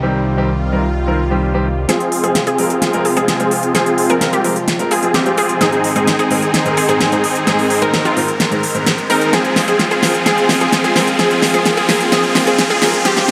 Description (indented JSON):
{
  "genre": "EDM, festival progressive house",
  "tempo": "129 BPM",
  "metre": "4/4",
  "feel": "straight",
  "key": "F minor",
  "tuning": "A4 = 439 Hz",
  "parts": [
    { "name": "clear baby grand piano", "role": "accompaniment", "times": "0.0-13.3 s", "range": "Ab2 to Bb4", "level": "-23 LUFS", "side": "equal", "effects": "vintage 12-bit sampler grit, digital delay" },
    { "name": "supersaw pad", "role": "sustained chords", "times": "0.0-13.3 s", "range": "C3 to Bb4", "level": "-24 LUFS", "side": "equal", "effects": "phaser" },
    { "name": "fat analog bass", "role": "bass", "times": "0.0-1.9 s", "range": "C2", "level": "-22 LUFS", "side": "equal", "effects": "none" },
    { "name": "unison pluck", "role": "arpeggios", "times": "1.9-13.3 s", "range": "F4 to Bb4", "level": "-23 LUFS", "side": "equal", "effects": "digital delay" },
    { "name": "supersaw chords", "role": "riff", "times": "1.9-13.3 s", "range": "C4 to Bb4", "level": "-19 LUFS", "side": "equal", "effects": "low-pass filter, digital delay" },
    { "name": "big-room dance drum kit", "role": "drums", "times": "1.9-13.3 s", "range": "hi-hat, snare drum", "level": "-20 LUFS", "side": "equal", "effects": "low-pass filter on snare, low-pass filter on hats" },
    { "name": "riser", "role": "sound effects", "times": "5.1-13.3 s", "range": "none", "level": "-28 LUFS", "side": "equal", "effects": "none" }
  ],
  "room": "moderate recital hall reverb, RT60 1.4 s, digital ambience",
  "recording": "high-pass filter",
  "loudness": "-15 LUFS",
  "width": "mono",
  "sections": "0.0-1.9 A section; 1.9-13.3 B section",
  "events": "build-up 1.9-13.3; drum fill 1.9-13.3; filter sweep on supersaw synth 1.9-13.3; filter sweep 1.9-13.3",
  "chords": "0.0 Cm; 1.9 Fm; 5.6 Ab; 9.3 Fm"
}